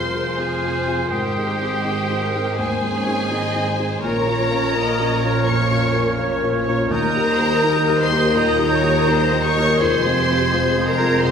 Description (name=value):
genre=cinematic, emotional film score for orchestra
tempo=83 BPM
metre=4/4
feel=rubato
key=F minor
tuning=A4 = 438 Hz
part: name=rich studio violin section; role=melody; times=0.0-11.3 s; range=G5 to Db6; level=-25 LUFS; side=left 2 dB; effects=none
part: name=clear oboe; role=second line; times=0.0-11.3 s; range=C5 to Eb5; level=-28 LUFS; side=right 2 dB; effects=none
part: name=rich studio violin section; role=second line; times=0.0-11.3 s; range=G4 to Db5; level=-26 LUFS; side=left 1 dB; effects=none
part: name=silver concert flute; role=second line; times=0.0-11.3 s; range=Eb6 to Ab6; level=-27 LUFS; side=left 1 dB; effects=none
part: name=dark baby grand piano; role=accompaniment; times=0.0-11.3 s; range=C2 to Ab4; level=-24 LUFS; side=left 2 dB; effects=none
part: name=warm studio viola section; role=accompaniment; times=0.0-11.3 s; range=Ab3 to Eb5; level=-26 LUFS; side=right 2 dB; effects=none
part: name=mellow French horn section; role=sustained chords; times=0.0-11.3 s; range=Eb3 to C5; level=-28 LUFS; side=left 1 dB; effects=none
part: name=concert harp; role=arpeggios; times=0.0-11.3 s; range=Ab2 to C6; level=-27 LUFS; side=left 7 dB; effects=none
part: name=dark studio double bass section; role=bass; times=0.0-11.3 s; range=F1 to Eb2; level=-26 LUFS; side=right 4 dB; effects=none
part: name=warm studio cello section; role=bass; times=0.0-11.3 s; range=Eb2 to Bb2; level=-27 LUFS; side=right 2 dB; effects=none
room=wet recital hall reverb, RT60 1.5 s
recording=minimal, uncompressed stereo recording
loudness=-16 LUFS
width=side -7 dB against mid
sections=0.0-11.3 A section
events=none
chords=0.0 Fm; 1.1 Abmaj7; 4.0 Bbm; 6.9 Eb; 9.8 Fm